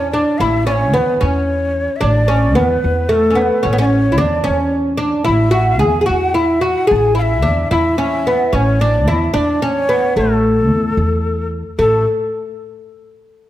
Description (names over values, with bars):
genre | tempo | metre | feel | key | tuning
persian | 74 BPM (dotted quarters) | 6/8 | straight | A dastgah mahur | A4 = 442 Hz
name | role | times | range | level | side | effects
oud | melody | 0.0-12.0 s | A3 to G#4 | -15 LUFS | equal | none
breathy bright ney | second line | 0.0-12.0 s | A4 to A5 | -21 LUFS | left 2 dB | none
upright bass | bass | 0.0-12.0 s | A1 to E2 | -18 LUFS | equal | none
room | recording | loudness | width
moderate recital hall reverb, RT60 1.6 s | none | -13 LUFS | side -13 dB against mid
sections
0.0-11.8 A section; 11.8-13.4 B section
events
none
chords
none